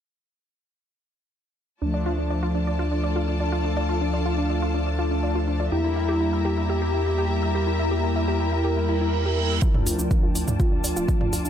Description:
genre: melodic techno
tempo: 123 BPM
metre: 4/4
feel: straight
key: D minor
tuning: A4 = 440 Hz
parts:
  - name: rich studio string section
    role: sustained chords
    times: 1.8-11.5 s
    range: F4 to Bb5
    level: -33 LUFS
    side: left 3 dB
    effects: sidechain pumping, low-pass filter
  - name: wide unison pluck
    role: arpeggios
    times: 1.8-11.5 s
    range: D4 to E6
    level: -31 LUFS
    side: equal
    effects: sidechain pumping, analog delay
  - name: brassy analog pad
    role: stabs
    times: 1.8-11.5 s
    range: F3 to E4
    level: -29 LUFS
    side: left 2 dB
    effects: chorus, sidechain pumping, analog delay
  - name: round analog bass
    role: bass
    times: 1.8-11.5 s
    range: D1 to E2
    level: -26 LUFS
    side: equal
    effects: tube saturation, sidechain pumping
  - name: ethereal airy pad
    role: texture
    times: 2.7-11.5 s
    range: D4 to A5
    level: -33 LUFS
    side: equal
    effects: ensemble chorus, built-in reverb, sidechain pumping
  - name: wide unison lead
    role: melody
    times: 5.7-11.5 s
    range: E4 to Bb4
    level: -29 LUFS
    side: equal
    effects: sidechain pumping, tape echo
  - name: reverse cymbal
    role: sound effects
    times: 8.9-9.6 s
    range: none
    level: -31 LUFS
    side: right 8 dB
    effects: none
  - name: deep house drum kit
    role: drums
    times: 9.6-11.5 s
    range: hi-hat, shaker, toms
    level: -28 LUFS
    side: right 1 dB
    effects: sidechain pumping on perc, studio reverb, sidechain pumping on toms, sidechain pumping on hats
  - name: electronic kick drum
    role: drums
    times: 9.6-11.2 s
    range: none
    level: -22 LUFS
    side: equal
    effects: overdrive, studio reverb
room: light reverb, digital ambience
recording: echo-heavy mix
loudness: -21 LUFS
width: side -9 dB against mid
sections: 1.8-9.6 A section; 9.6-11.5 B section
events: reverse cymbal 8.9-9.6; build-up 9.6-11.5; filter sweep on synth pluck 9.6-11.5; filter sweep on string section 9.6-11.5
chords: 1.8 Dm; 5.7 Edim; 9.6 Dm

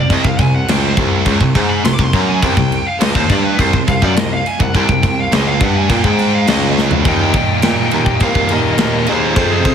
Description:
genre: heavy metal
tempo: 104 BPM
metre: 4/4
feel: straight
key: C minor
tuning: A4 = 441 Hz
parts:
  - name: high-gain lead guitar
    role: melody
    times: 0.0-9.7 s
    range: B4 to D6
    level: -20 LUFS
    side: left 1 dB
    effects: distortion, tape echo
  - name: heavy high-gain guitar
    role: riff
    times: 0.0-9.7 s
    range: C2 to F4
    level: -22 LUFS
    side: left 1 dB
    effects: distortion
  - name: high-gain distorted guitar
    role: riff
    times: 0.0-9.7 s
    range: C2 to C3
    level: -20 LUFS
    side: left 9 dB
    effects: distortion, slapback echo
  - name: scooped high-gain guitar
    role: riff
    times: 0.0-9.7 s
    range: C2 to F3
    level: -19 LUFS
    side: right 8 dB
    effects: distortion
  - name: clear baritone saxophone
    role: bass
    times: 0.1-9.7 s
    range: C2 to Bb2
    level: -20 LUFS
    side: equal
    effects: none
  - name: tight metal drum kit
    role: drums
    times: 0.1-9.7 s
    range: crash cymbal, kick drum, ride cymbal, snare drum, toms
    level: -16 LUFS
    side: equal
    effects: none
  - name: high-gain lead guitar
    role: second line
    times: 7.1-9.7 s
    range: Ab4 to Eb5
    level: -24 LUFS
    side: equal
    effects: distortion
room: moderate concert hall reverb, RT60 2.2 s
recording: big arena sound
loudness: -12 LUFS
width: side -8 dB against mid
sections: 0.0-7.1 A section; 7.1-9.7 B section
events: lead electric guitar solo 0.0-7.1; drum fill 6.8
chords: 0.0 C5; 7.1 Eb

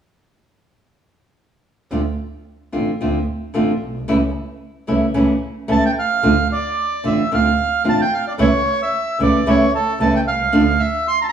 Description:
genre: tango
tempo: 112 BPM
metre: 4/4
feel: rubato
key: D minor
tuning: A4 = 442 Hz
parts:
  - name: nylon-string guitar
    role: accompaniment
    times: 1.9-10.6 s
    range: C#3 to F4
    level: -18 LUFS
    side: equal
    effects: none
  - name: rich double bass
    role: bass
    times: 1.9-10.8 s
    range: A1 to D2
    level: -23 LUFS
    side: right 3 dB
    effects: none
  - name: bandoneon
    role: melody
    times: 5.7-11.3 s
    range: A4 to C6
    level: -18 LUFS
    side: right 3 dB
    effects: none
room: wet stone room reverb, RT60 1.3 s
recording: band playing live in one room, studio ambience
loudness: -16 LUFS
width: side -8 dB against mid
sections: 1.9-6.2 A section; 6.2-11.3 B section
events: none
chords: 1.9 Dm7; 4.1 A/C#; 6.2 Dm7; 8.4 A/C#; 10.5 Dm

